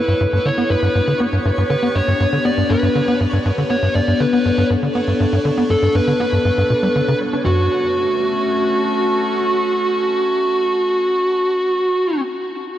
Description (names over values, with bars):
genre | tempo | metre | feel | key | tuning
ambient, sequencer-driven space music | 120 BPM | 4/4 | straight | F# phrygian | A4 = 437 Hz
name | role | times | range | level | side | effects
fuzz lead guitar | melody | 0.0-12.2 s | F#4 to D5 | -18 LUFS | equal | distortion, ping-pong delay
evolving wavetable pad | sustained chords | 0.0-12.2 s | A3 to A4 | -21 LUFS | left 2 dB | phaser, built-in reverb
twinkling granular texture | texture | 0.0-7.5 s | C#5 | -31 LUFS | right 2 dB | built-in reverb
tight sequencer bass | riff | 0.1-7.7 s | F#2 to D4 | -19 LUFS | equal | wide subtle chorus, ping-pong delay
room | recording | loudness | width
wet huge ambient reverb, RT60 7.6 s | worn, warbling old tape, cassette tape, warbly pitch drift | -15 LUFS | side -12 dB against mid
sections
0.0-7.5 A section; 7.5-11.5 B section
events
none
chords
0.0 G; 7.5 F#m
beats
0.46 0.95 | 1.46 1.96 2.46 2.96 | 3.46 3.96 4.46 4.96 | 5.46 5.96 6.46 6.96 | 7.46 7.96 8.46 8.96 | 9.46 9.96 10.46 10.96